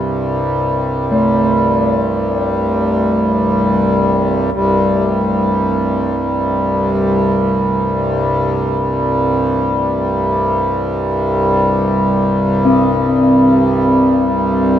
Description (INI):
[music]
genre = world meditative, free-time meditation music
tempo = free time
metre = none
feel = none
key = unclear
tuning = A4 = 440 Hz
[part]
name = hand-pumped harmonium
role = drone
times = 0.0-14.8 s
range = C2 to G2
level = -14 LUFS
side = equal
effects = none
[part]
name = bronze singing bowl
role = texture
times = 1.1-14.8 s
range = A3 to C4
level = -18 LUFS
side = equal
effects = none
[sound]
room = wet huge ambient reverb, RT60 4.5 s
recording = none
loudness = -13 LUFS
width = side -10 dB against mid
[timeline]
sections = 0.0-14.8 A section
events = none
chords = none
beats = free time